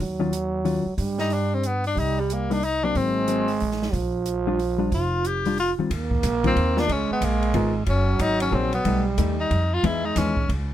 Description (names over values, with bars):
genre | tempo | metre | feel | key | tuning
jazz, small-group swing and bop | 183 BPM | 3/4 | swing 63% on 8ths | Bb major | A4 = 444 Hz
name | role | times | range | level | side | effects
growling trombone | second line | 0.0-10.5 s | F3 to Bb3 | -27 LUFS | right 5 dB | none
upright bass | bass | 0.0-10.7 s | F1 to G2 | -26 LUFS | equal | none
open jazz drum kit | drums | 0.0-10.6 s | hi-hat, kick drum, ride cymbal, snare drum | -32 LUFS | right 1 dB | none
hollow-body jazz guitar | accompaniment | 0.2-10.4 s | Eb3 to Bb4 | -26 LUFS | left 4 dB | none
bright tenor saxophone | melody | 1.2-10.5 s | G3 to G4 | -25 LUFS | left 3 dB | none
room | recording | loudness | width
light reverb | none | -21 LUFS | side -12 dB against mid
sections
0.0-5.9 A section; 5.9-10.7 B section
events
none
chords
0.0 Ebm9; 1.0 G5; 2.0 Cm7; 3.0 Ab9; 3.9 Bb6; 5.9 Ebsus2; 6.9 Db6; 7.9 Gb69; 8.8 Baug7; 9.8 Emaj7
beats
| 0.00 0.33 0.65 | 0.98 1.31 1.64 | 1.97 2.29 2.62 | 2.95 3.28 3.60 | 3.93 4.26 4.59 | 4.92 5.25 5.57 | 5.90 6.23 6.56 | 6.88 7.21 7.54 | 7.87 8.19 8.52 | 8.85 9.18 9.50 | 9.83 10.16 10.48